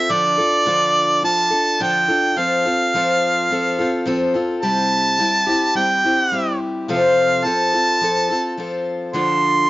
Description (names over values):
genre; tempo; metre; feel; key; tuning
folk; 106 BPM; 4/4; straight; C major; A4 = 439 Hz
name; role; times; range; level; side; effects
clear harmonica; melody; 0.0-9.7 s; D5 to C6; -17 LUFS; right 1 dB; cassette tape, plate reverb
picked steel-string acoustic guitar; accompaniment; 0.0-9.7 s; C3 to A4; -20 LUFS; left 2 dB; cassette tape
room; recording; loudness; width
moderate booth ambience, RT60 0.2 s; home recording on cassette, nothing above 7.6 kHz; -16 LUFS; side -17 dB against mid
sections
0.0-4.6 A section; 4.6-9.7 B section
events
none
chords
0.1 Dm; 2.4 F; 4.6 C; 6.9 F/C; 9.1 Dm